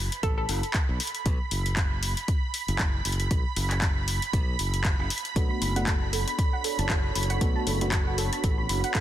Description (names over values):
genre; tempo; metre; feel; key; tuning
deep house; 117 BPM; 4/4; swing 57% on 16ths; B minor; A4 = 440 Hz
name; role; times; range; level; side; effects
modern bright fingered electric bass; bass; 0.0-8.8 s; F#1 to B1; -29 LUFS; equal; sidechain pumping
analog string pad; texture; 0.0-9.0 s; B5; -34 LUFS; right 8 dB; ensemble chorus, sidechain pumping
punchy analog drum machine; drums; 0.1-9.0 s; handclaps, hi-hat; -31 LUFS; left 2 dB; overdrive
electronic kick drum; drums; 0.2-9.0 s; none; -26 LUFS; equal; none
soft string machine; sustained chords; 5.4-9.0 s; B3 to C#5; -36 LUFS; right 2 dB; phaser, ensemble chorus, sidechain pumping
soft round pluck; arpeggios; 5.4-9.0 s; A4 to B5; -34 LUFS; right 2 dB; wide subtle chorus, sidechain pumping, ping-pong delay
mellow FM electric piano; stabs; 5.4-8.0 s; A3 to F#4; -33 LUFS; equal; chorus, tremolo, sidechain pumping, low-pass filter, ping-pong delay
room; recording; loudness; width
light reverb; dense, heavily limited modern master; -24 LUFS; side -12 dB against mid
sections
0.0-9.0 A section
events
none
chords
0.0 B5; 1.3 F#sus4; 5.4 Bm7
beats
0.23 0.74 | 1.26 1.77 2.28 2.80 | 3.31 3.82 4.33 4.85 | 5.36 5.87 6.38 6.90 | 7.41 7.92 8.44 8.95